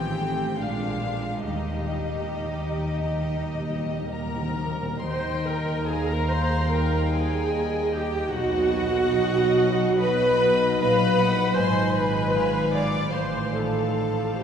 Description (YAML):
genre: classical, slow romantic movement for symphony orchestra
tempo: 65-81 BPM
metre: 4/4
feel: rubato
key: Eb major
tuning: A4 = 440 Hz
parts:
  - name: warm chamber violin section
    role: melody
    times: 0.0-14.4 s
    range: Eb5 to D6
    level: -33 LUFS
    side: left 5 dB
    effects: none
  - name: warm chamber violin section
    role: second line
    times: 0.0-14.4 s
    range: Eb4 to Bb5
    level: -33 LUFS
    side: left 1 dB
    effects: none
  - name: warm chamber viola section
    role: accompaniment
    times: 0.0-14.4 s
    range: F3 to D5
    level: -25 LUFS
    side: right 1 dB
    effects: none
  - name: concert harp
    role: arpeggios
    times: 0.0-14.4 s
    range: Ab2 to C5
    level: -32 LUFS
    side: left 3 dB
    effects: none
  - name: rich symphonic cello section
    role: bass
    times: 0.0-14.4 s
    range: Eb2 to G4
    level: -34 LUFS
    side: right 2 dB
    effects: none
  - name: warm chamber double bass section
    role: bass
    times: 0.0-14.4 s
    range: Ab1 to Eb2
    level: -30 LUFS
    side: right 2 dB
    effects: none
  - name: timpani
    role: percussion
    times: 1.5-6.3 s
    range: Eb3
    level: -34 LUFS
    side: equal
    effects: none
  - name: dark French horn section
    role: sustained chords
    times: 5.0-14.4 s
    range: F3 to Eb4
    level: -32 LUFS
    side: left 4 dB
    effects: none
room: wet cathedral reverb, RT60 6.0 s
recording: recorded in a church or concert hall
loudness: -22 LUFS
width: side -8 dB against mid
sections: 0.0-5.0 A section; 5.0-14.4 A section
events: timpani fill 1.5-5.0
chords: 0.0 F7/A; 0.6 Bb7b9; 1.5 Eb; 8.3 B; 11.6 Fm7b5/Ab; 13.1 F7/A